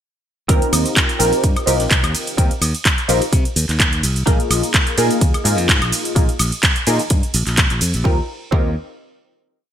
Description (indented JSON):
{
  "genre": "filtered disco house",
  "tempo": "127 BPM",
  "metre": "4/4",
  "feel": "swing 54% on 16ths",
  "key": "Eb major",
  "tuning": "A4 = 439 Hz",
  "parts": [
    { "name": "funky polysynth comp", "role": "accompaniment", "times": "0.5-8.7 s", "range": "Bb3 to Bb4", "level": "-20 LUFS", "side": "equal", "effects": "chorus, phaser, sidechain pumping" },
    { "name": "modern bright fingered electric bass", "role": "bass", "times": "0.5-8.7 s", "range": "Bb1 to C3", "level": "-20 LUFS", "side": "equal", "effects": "sidechain pumping" },
    { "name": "electronic kick drum", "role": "drums", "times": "0.5-8.6 s", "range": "none", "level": "-17 LUFS", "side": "equal", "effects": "none" },
    { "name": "house drum kit", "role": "drums", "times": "0.5-8.0 s", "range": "cabasa, handclaps, hi-hat, ride cymbal, woodblock", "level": "-18 LUFS", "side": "right 1 dB", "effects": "sidechain pumping on hats, sidechain pumping on perc, sidechain pumping on cymbals, gated reverb" }
  ],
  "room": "light reverb",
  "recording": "bright 1980s-style digital production",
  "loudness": "-14 LUFS",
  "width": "side -10 dB against mid",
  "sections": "0.5-8.0 drop; 8.0-9.7 final chord",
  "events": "drop 0.5-8.0",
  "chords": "0.5 Eb69; 4.3 Bb7sus4; 8.0 Eb69",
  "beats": "| 0.49 0.96 1.44 1.91 | 2.38 2.85 3.33 3.80 | 4.27 4.74 5.21 5.69 | 6.16 6.63 7.10 7.58 | 8.05 8.52"
}